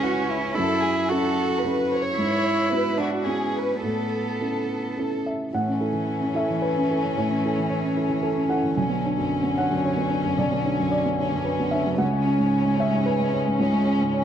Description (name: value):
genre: neoclassical piano and strings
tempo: 112 BPM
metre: 3/4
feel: rubato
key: unclear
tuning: A4 = 440 Hz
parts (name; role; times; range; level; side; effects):
- warm chamber violin section; melody; 0.0-14.2 s; C#4 to C#5; -27 LUFS; left 4 dB; none
- warm cello; second line; 0.0-14.2 s; C#3 to F#4; -28 LUFS; right 2 dB; none
- felt-muted upright piano; accompaniment; 0.0-14.2 s; B1 to G#5; -24 LUFS; right 1 dB; none
room: moderate plate reverb, RT60 3.3 s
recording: worn, warbling old tape, cassette tape, warbly pitch drift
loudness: -21 LUFS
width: side -9 dB against mid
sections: 0.0-5.5 A section; 5.5-14.2 B section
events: none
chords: 0.0 C#m7; 0.6 F#m7; 2.2 Eadd9/G#; 3.8 A; 8.8 Bmadd9; 12.0 C#sus4